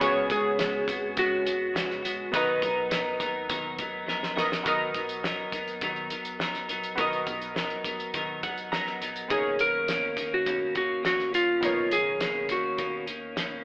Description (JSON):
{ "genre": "indie pop, bedroom pop", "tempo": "103 BPM", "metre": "4/4", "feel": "straight", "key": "B major", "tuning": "A4 = 440 Hz", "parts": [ { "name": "clean electric guitar", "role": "accompaniment", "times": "0.0-13.6 s", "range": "B2 to A#4", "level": "-32 LUFS", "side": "left 1 dB", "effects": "vibrato effect" }, { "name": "warm analog keys", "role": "accompaniment", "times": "0.0-13.6 s", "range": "B3 to A#5", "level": "-32 LUFS", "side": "equal", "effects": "chorus" }, { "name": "mellow tine electric piano", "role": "bass", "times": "0.0-13.6 s", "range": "A#1 to E#2", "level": "-49 LUFS", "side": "equal", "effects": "medium stereo tremolo" }, { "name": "cloth-damped thuddy drum kit", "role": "drums", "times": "0.0-13.5 s", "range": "hi-hat, kick drum, snare drum", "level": "-33 LUFS", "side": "equal", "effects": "none" }, { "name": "clean lap steel guitar", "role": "melody", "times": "0.3-4.0, 9.3-13.0 s", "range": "E#4 to B4", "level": "-26 LUFS", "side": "equal", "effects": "none" } ], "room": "moderate stone room reverb, RT60 1.1 s", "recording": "band playing live in one room, telephone sound", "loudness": "-25 LUFS", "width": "side -24 dB against mid", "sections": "0.0-4.7 A section; 4.7-9.3 B section; 9.3-13.6 C section", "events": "drum fill 4.1-4.7; synth keys fill 8.1-9.3", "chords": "0.0 C#7sus4; 2.3 Bmaj7; 9.3 Bmaj9", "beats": "| 0.01 0.59 1.18 1.75 | 2.33 2.92 3.50 4.08 | 4.66 5.24 5.82 6.40 | 6.98 7.56 8.14 8.72 | 9.30 9.88 10.47 11.05 | 11.63 12.21 12.79 13.37" }